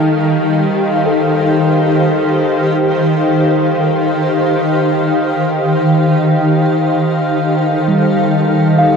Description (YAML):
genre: ambient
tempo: free time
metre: none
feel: none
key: unclear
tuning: A4 = 440 Hz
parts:
  - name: granular cloud pad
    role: sustained chords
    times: 0.0-9.0 s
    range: Eb3 to F5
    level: -13 LUFS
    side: equal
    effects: built-in reverb, shimmer reverb
  - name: muted felt-like synth keys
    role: arpeggios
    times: 0.0-9.0 s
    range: G3 to F5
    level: -20 LUFS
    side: right 1 dB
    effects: chorus, diffuse ambient delay
  - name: bowed-like drone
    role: drone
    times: 0.0-9.0 s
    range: Eb3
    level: -18 LUFS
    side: equal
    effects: built-in reverb
room: wet huge ambient reverb, RT60 8.3 s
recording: worn, warbling old tape, cassette tape, warbly pitch drift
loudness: -11 LUFS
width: side -5 dB against mid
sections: 0.0-9.0 A section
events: none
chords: 0.0 Fadd9/Eb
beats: free time